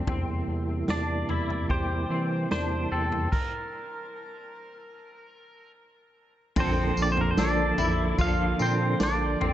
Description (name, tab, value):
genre	dream pop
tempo	74 BPM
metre	4/4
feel	straight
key	unclear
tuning	A4 = 441 Hz
part	mellow tonewheel organ	sustained chords	0.0-9.5 s	C3 to A4	-31 LUFS	right 2 dB	chorus vibrato, fast rotary speaker
part	semi-hollow electric guitar	arpeggios	0.0-9.5 s	C4 to G4	-33 LUFS	left 4 dB	ensemble chorus, tape echo, shimmer reverb
part	round analog bass	bass	0.0-9.5 s	Bb1 to E3	-30 LUFS	equal	none
part	vintage drum kit	drums	0.1-9.5 s	crash cymbal, kick drum, snare drum, tambourine, toms	-30 LUFS	equal	none
part	pedal steel guitar	melody	0.9-9.5 s	A4 to F5	-31 LUFS	right 1 dB	tape echo, shimmer reverb
part	clean electric guitar	accompaniment	6.6-9.5 s	Bb2 to A4	-32 LUFS	right 3 dB	tremolo, analog chorus
part	celesta	texture	7.4-8.8 s	E6	-44 LUFS	right 2 dB	none
room	light reverb, small room reverb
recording	nothing above 8.0 kHz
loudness	-24 LUFS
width	side -12 dB against mid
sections	0.0-6.6 A section; 6.6-9.5 B section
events	stop 3.3-6.6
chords	0.1 C7/E; 3.3 N.C.; 6.6 Bbmaj7